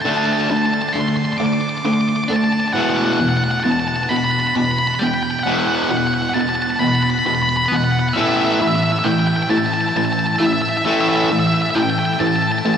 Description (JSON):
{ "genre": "rock", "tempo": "44 BPM (dotted quarters)", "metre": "6/8", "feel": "straight", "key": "E minor", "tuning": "A4 = 440 Hz", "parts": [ { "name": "octave-fuzz lead guitar", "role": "melody", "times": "0.0-12.8 s", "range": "E5 to D6", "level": "-19 LUFS", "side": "equal", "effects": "distortion, diffuse ambient delay" }, { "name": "distorted electric guitar", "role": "riff", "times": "0.0-12.8 s", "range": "E2 to D4", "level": "-18 LUFS", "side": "equal", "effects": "distortion" } ], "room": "wet huge ambient reverb, RT60 7.5 s", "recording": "dreamy mix soaked in reverb", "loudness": "-15 LUFS", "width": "side -8 dB against mid", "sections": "0.0-12.8 A section", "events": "build-up 0.0-12.8", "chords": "0.0 D5; 2.8 Esus2; 8.2 A5" }